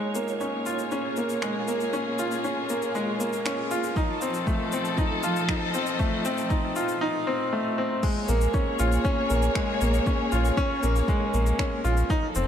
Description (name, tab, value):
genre	piano and strings electronica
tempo	118 BPM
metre	4/4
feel	straight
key	Bb minor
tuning	A4 = 440 Hz
part	dark studio string section	sustained chords	0.0-12.5 s	F3 to Eb5	-30 LUFS	equal	sidechain pumping, low-pass filter
part	bright upright piano	riff	0.0-12.5 s	Ab3 to F4	-27 LUFS	equal	tape echo
part	deep house drum kit	drums	0.1-12.5 s	crash cymbal, finger snaps, shaker	-38 LUFS	left 2 dB	overdrive
part	electronic kick drum	drums	4.0-12.2 s	none	-27 LUFS	equal	overdrive
part	round analog bass	bass	8.3-12.5 s	F1 to Bb1	-23 LUFS	equal	sidechain pumping
room	light reverb, digital ambience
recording	none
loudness	-23 LUFS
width	side -9 dB against mid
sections	0.0-8.0 A section; 8.0-12.5 B section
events	build-up 0.0-8.0; drop 8.0-12.5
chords	0.0 Bbm7; 4.0 F7; 8.0 Bbm7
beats	0.41 0.91 1.42 | 1.93 2.44 2.95 3.46 | 3.96 4.47 4.98 5.49 | 6.00 6.51 7.02 7.52 | 8.03 8.54 9.05 9.56 | 10.07 10.57 11.08 11.59 | 12.10